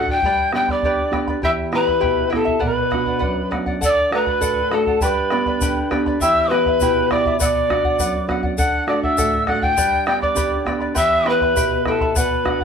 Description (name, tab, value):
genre	andean folk, Andean ensemble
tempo	101 BPM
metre	2/4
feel	straight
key	unclear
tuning	A4 = 439 Hz
part	breathy reedy pan flute	melody	0.0-12.6 s	A4 to G5	-19 LUFS	left 2 dB	none
part	breathy quena	second line	0.0-12.6 s	A5 to G6	-24 LUFS	right 2 dB	none
part	charango	accompaniment	0.0-12.6 s	E4 to B5	-24 LUFS	right 1 dB	none
part	nylon-string guitar	accompaniment	0.0-12.6 s	E2 to G4	-25 LUFS	right 3 dB	none
part	bombo	percussion	0.1-12.6 s	none	-25 LUFS	left 1 dB	none
part	tube shaker	percussion	3.8-12.3 s	none	-28 LUFS	left 5 dB	none
room	wet small room reverb, RT60 0.5 s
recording	heard from further back in the room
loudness	-16 LUFS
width	side -6 dB against mid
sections	0.0-3.8 A section; 3.8-12.6 A section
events	none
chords	0.2 G; 1.4 Em; 2.6 Bm; 3.8 D; 5.0 G; 6.2 Em; 7.4 Bm; 8.6 D; 9.8 G; 11.0 Em